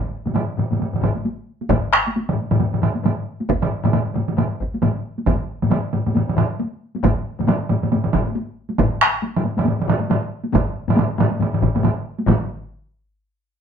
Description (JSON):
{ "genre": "japanese traditional, taiko drum ensemble", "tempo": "136 BPM", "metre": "4/4", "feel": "swing 60% on 16ths", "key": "none", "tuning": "none", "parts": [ { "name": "solo taiko drums", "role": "percussion", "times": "0.3-12.7 s", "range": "none", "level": "-22 LUFS", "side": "right 5 dB", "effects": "none" }, { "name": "taiko ensemble", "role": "percussion", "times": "0.3-12.5 s", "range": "none", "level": "-24 LUFS", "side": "left 1 dB", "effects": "none" }, { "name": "taiko ensemble", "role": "percussion", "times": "0.3-12.7 s", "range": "none", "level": "-22 LUFS", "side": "left 3 dB", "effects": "none" }, { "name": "taiko ensemble", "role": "percussion", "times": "1.0-12.5 s", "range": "none", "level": "-23 LUFS", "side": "equal", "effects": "none" } ], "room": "wet studio reverb, RT60 0.6 s", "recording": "band playing live in one room", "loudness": "-18 LUFS", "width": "side -7 dB against mid", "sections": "0.0-12.3 A section; 12.3-13.6 B section", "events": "speeding up 0.0-13.6", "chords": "none" }